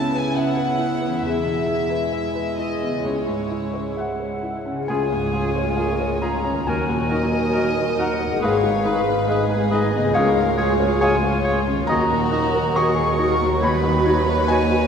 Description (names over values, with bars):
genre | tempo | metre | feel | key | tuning
cinematic, emotional film score for orchestra | 68 BPM | 4/4 | rubato | C# minor | A4 = 440 Hz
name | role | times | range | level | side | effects
warm symphonic violin section | melody | 0.0-14.9 s | Bb4 to A5 | -30 LUFS | left 3 dB | none
dark studio viola section | accompaniment | 0.0-14.9 s | Gb3 to Gb4 | -27 LUFS | right 2 dB | none
felt-muted upright piano | accompaniment | 0.0-14.9 s | C#2 to Db6 | -24 LUFS | left 1 dB | none
concert harp | arpeggios | 0.0-14.9 s | Ab2 to A4 | -28 LUFS | left 4 dB | none
dark studio cello section | bass | 0.0-14.9 s | C#2 to C#3 | -28 LUFS | right 3 dB | none
silver concert flute | second line | 4.0-14.9 s | Eb5 to Db6 | -26 LUFS | left 1 dB | none
clear oboe | second line | 4.9-14.7 s | Ab4 to Eb5 | -30 LUFS | right 1 dB | none
warm clarinet | second line | 4.9-14.7 s | F4 to Ab4 | -29 LUFS | left 1 dB | none
warm symphonic violin section | second line | 4.9-14.9 s | F4 to Eb5 | -28 LUFS | left 3 dB | none
rich chamber double bass section | bass | 4.9-14.9 s | Ab1 to Eb2 | -28 LUFS | right 4 dB | none
room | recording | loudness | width
wet concert hall reverb, RT60 2.3 s | none | -18 LUFS | side -7 dB against mid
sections
0.0-4.9 A section; 4.9-14.9 A section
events
none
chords
0.0 Aadd9/C#; 1.3 E; 3.0 C#m; 4.9 Db; 6.7 Ebm; 8.4 Abm; 10.2 Db; 11.9 Ebm; 13.6 Badd9/D#